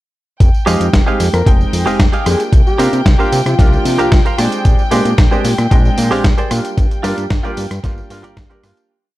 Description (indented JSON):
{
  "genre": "nu-disco, nu disco",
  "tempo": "113 BPM",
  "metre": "4/4",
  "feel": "straight",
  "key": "F dorian",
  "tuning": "A4 = 440 Hz",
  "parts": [
    { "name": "clear chamber violin section", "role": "sustained chords", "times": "0.4-8.9 s", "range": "G5", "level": "-25 LUFS", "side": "left 2 dB", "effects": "vintage 12-bit sampler grit, sidechain pumping" },
    { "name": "fat analog bass", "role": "bass", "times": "0.4-8.7 s", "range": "F1 to C3", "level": "-17 LUFS", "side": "equal", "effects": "sidechain pumping" },
    { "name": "dusty soul sampler-style drum kit", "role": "drums", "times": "0.4-8.9 s", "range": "hi-hat, rim click, snare drum, tambourine", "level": "-21 LUFS", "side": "equal", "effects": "studio reverb" },
    { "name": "electronic kick drum", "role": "drums", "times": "0.4-8.5 s", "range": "none", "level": "-12 LUFS", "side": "equal", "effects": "studio reverb" },
    { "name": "clear concert grand piano", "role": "accompaniment", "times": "0.7-8.9 s", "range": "G3 to G5", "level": "-20 LUFS", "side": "right 1 dB", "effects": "sidechain pumping, digital delay" },
    { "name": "direct-recorded clean electric guitar", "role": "riff", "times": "0.7-8.8 s", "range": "F4 to F5", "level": "-21 LUFS", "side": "right 3 dB", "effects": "wide subtle chorus, digital delay" },
    { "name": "soft octave-layered synth lead", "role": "melody", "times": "1.3-4.2 s", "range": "F4 to Bb4", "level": "-21 LUFS", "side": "left 1 dB", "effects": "chorus, cassette tape, digital delay" },
    { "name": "cowbell", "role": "percussion", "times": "4.9-8.6 s", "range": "none", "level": "-28 LUFS", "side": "left 4 dB", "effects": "none" }
  ],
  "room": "digital ambience",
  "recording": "none",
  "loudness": "-11 LUFS",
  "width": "side -16 dB against mid",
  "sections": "0.4-8.9 drop",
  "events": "drop 0.4-8.9; fade-out 6.1-8.9",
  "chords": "0.4 Fm9; 2.5 C7sus4; 4.4 Bb13; 6.8 Gm7"
}